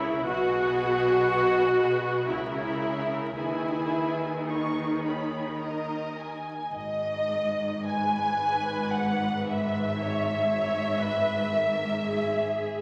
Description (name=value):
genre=classical, slow romantic movement for string orchestra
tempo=51-62 BPM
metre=3/4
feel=rubato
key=G# minor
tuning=A4 = 440 Hz
part: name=warm studio violin section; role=melody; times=0.0-12.8 s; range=C#5 to C#6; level=-33 LUFS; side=equal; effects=none
part: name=warm studio violin section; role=second line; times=0.0-12.8 s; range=G#4 to G#5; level=-37 LUFS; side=equal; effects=none
part: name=warm studio viola section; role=accompaniment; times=0.0-12.8 s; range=D#4 to C#5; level=-30 LUFS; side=equal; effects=none
part: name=rich studio cello section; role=bass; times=0.0-12.8 s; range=G#2 to D#3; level=-35 LUFS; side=equal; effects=none
part: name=rich studio double bass section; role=bass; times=0.0-12.8 s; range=G#1 to D#2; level=-40 LUFS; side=equal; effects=none
room=wet recital hall reverb, RT60 1.6 s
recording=vinyl crackle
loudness=-27 LUFS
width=mono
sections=0.0-6.7 A section; 6.7-12.8 B section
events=none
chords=0.3 G#m/B; 2.3 A#dim/C#; 3.4 G#m/D#; 5.6 D#5; 6.7 G#m